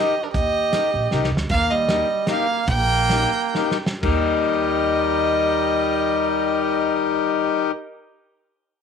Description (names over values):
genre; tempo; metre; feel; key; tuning
alpine folk, alpine dance band; 117-160 BPM; 3/4; swing 53% on 8ths; Eb major; A4 = 440 Hz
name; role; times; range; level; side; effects
clear fiddle; melody; 0.0-7.7 s; Bb4 to G5; -23 LUFS; right 1 dB; slapback echo
warm trumpet; second line; 0.0-7.7 s; G3 to G4; -27 LUFS; right 14 dB; none
accordion; accompaniment; 0.0-7.7 s; Eb4 to Bb4; -22 LUFS; left 11 dB; none
upright bass; bass; 0.3-7.7 s; Bb1 to Eb2; -26 LUFS; right 1 dB; none
loose indie drum kit; drums; 0.3-4.2 s; crash cymbal, hi-hat, kick drum, snare drum; -26 LUFS; right 1 dB; none
room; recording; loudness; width
moderate spring reverb, RT60 1.2 s, studio ambience; 1960s-style stereo with parts hard left and right; -18 LUFS; side -6 dB against mid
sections
0.0-1.5 A section; 1.5-4.0 B section; 4.0-7.1 C section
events
drum fill 1.1-1.5, 3.5-4.0; slowing down 1.5-4.0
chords
0.0 Eb; 1.5 Ebadd9; 4.0 Eb